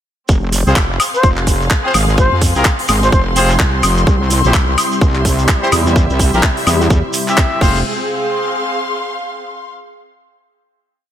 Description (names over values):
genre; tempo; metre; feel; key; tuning
bass house; 127 BPM; 4/4; swing 59% on 16ths; F harmonic minor; A4 = 443 Hz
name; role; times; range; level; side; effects
wobble bass; bass; 0.3-7.8 s; F1 to F2; -15 LUFS; equal; chorus, tube saturation, sidechain pumping
electronic kick drum; drums; 0.3-7.7 s; none; -15 LUFS; equal; none
shekere; percussion; 0.3-7.8 s; none; -25 LUFS; right 2 dB; none
rich studio string section; texture; 0.3-9.7 s; C4 to C6; -21 LUFS; left 2 dB; sidechain pumping
garage drum kit; drums; 0.5-7.7 s; crash cymbal, handclaps, hi-hat, woodblock; -18 LUFS; left 1 dB; none
clear horn section; stabs; 0.7-7.8 s; C4 to E5; -20 LUFS; left 1 dB; sidechain pumping, dub echo
silver concert flute; melody; 1.1-3.2 s; C5; -19 LUFS; left 1 dB; dub echo
sweeping resonant pad; sustained chords; 4.1-7.8 s; C3 to F4; -22 LUFS; right 1 dB; wide subtle chorus, sidechain pumping
room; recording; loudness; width
light reverb, small room ambience; none; -11 LUFS; side -10 dB against mid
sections
0.3-7.8 drop; 7.8-9.7 final chord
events
drop 0.3-7.8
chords
0.3 Fm; 4.1 C; 7.6 Fm